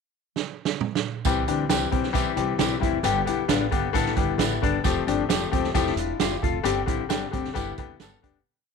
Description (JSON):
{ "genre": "uptempo 1960s-style soul", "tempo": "133 BPM", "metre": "4/4", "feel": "straight", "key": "C major", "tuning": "A4 = 440 Hz", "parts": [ { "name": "vintage drum kit", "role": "drums", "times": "0.4-8.3 s", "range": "hi-hat, kick drum, snare drum, toms", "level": "-27 LUFS", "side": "right 6 dB", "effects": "none" }, { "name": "bright grand piano", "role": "accompaniment", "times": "1.2-8.4 s", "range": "D3 to A4", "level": "-26 LUFS", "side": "left 9 dB", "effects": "none" }, { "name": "tambourine", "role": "percussion", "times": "1.2-8.1 s", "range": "none", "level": "-36 LUFS", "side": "right 19 dB", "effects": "none" }, { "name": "upright bass", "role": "bass", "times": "1.3-8.4 s", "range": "E1 to D2", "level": "-31 LUFS", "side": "right 2 dB", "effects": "none" }, { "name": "mellow electric guitar", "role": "riff", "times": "1.5-8.4 s", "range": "B3 to G4", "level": "-29 LUFS", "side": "left 12 dB", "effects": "wide subtle chorus" } ], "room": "light reverb, small room ambience", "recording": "1960s-style stereo with parts hard left and right", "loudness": "-22 LUFS", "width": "side -5 dB against mid", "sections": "0.0-1.3 pickup bar; 1.3-8.5 verse", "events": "drum fill 0.4-1.3; fade-out 6.7-8.5", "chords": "0.0 N.C.; 1.3 C; 3.1 G; 4.9 Fadd9; 6.7 Gsus4; 7.6 G" }